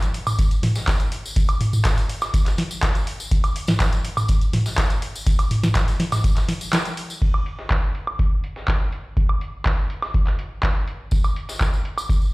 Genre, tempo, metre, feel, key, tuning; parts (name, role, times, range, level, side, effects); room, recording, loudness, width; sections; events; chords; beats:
house; 123 BPM; 4/4; straight
booming analog drum machine; drums; 0.0-12.1 s; crash cymbal, handclaps, hi-hat, snare drum, toms, woodblock; -23 LUFS; equal; low-pass filter on hats, low-pass filter on snare, low-pass filter on toms, low-pass filter on perc, low-pass filter on cymbals
tambourine; percussion; 0.0-7.2, 11.1-12.3 s; -35 LUFS; left 2 dB
dusty soul sampler-style drum kit; drums; 0.1-12.2 s; hi-hat, snare drum; -36 LUFS; equal; high-pass filter on snare, low-pass filter on snare, high-pass filter on hats, low-pass filter on hats, high-pass filter on room, low-pass filter on room
electronic kick drum; drums; 0.4-12.2 s; -21 LUFS; equal
little or no reverb; played on a big sound system in a bare room, stone room reverb; -19 LUFS; side -23 dB against mid
0.0-7.2 A section; 7.2-12.3 B section
kick drops out 6.7-7.2; band accent 6.7
0.39 0.88 | 1.36 1.85 2.34 2.83 | 3.31 3.80 4.29 4.78 | 5.27 5.75 6.24 6.73 | 7.22 7.71 8.19 8.68 | 9.17 9.66 10.14 10.63 | 11.12 11.61 12.10